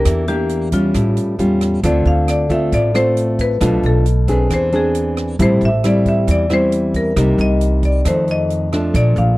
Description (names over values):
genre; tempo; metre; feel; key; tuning
bossa nova; 135 BPM; 4/4; straight; D minor; A4 = 440 Hz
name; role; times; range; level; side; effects
marimba with medium hard mallets; melody; 0.0-9.4 s; F4 to F5; -20 LUFS; left 1 dB; none
nylon-string guitar; accompaniment; 0.0-9.4 s; F2 to G#4; -17 LUFS; equal; none
upright bass; bass; 0.0-9.4 s; A1 to F2; -18 LUFS; equal; none
open jazz drum kit; drums; 0.1-9.3 s; hi-hat, kick drum, rim click; -23 LUFS; right 1 dB; none
room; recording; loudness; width
studio reverb; dry, close 1970s-style studio recording; -13 LUFS; side -19 dB against mid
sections
0.0-1.8 A section; 1.8-9.4 B section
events
none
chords
0.1 Em7b5; 0.9 A7b13; 1.8 Dm7; 3.6 Bm7b5; 4.5 E7b13; 5.4 Am7; 7.2 Cm7; 8.1 F6